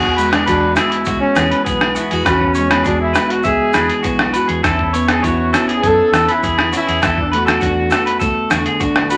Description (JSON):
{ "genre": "highlife guitar band", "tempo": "101 BPM", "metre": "4/4", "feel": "straight", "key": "E mixolydian", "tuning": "A4 = 439 Hz", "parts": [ { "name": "clear horn section", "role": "melody", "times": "0.0-8.5 s", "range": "B3 to A4", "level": "-21 LUFS", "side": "equal", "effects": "none" }, { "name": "fingerpicked plugged-in steel-string acoustic guitar", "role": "accompaniment", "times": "0.0-9.2 s", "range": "E2 to F#4", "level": "-23 LUFS", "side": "equal", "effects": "none" }, { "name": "electric guitar at the edge of break-up", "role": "arpeggios", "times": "0.0-9.2 s", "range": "F#4 to E5", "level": "-22 LUFS", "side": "equal", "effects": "none" }, { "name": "hollow-body short-scale fingered electric bass", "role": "bass", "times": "0.0-9.1 s", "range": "A1 to F#2", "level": "-27 LUFS", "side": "equal", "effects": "none" }, { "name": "trip hop sampler-style drum kit", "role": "drums", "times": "0.0-9.2 s", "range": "hi-hat, kick drum, rim click", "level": "-21 LUFS", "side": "equal", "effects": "none" }, { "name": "maracas", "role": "percussion", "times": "0.2-9.2 s", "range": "none", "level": "-39 LUFS", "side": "equal", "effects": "none" }, { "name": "agogo bells", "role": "percussion", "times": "0.3-9.1 s", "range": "none", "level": "-28 LUFS", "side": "equal", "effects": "none" } ], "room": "moderate studio reverb, RT60 0.6 s", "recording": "none", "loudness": "-15 LUFS", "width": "mono", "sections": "0.0-9.2 A section", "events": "none", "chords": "0.0 Eadd9; 4.6 Aadd9/E; 7.0 Dadd9/E" }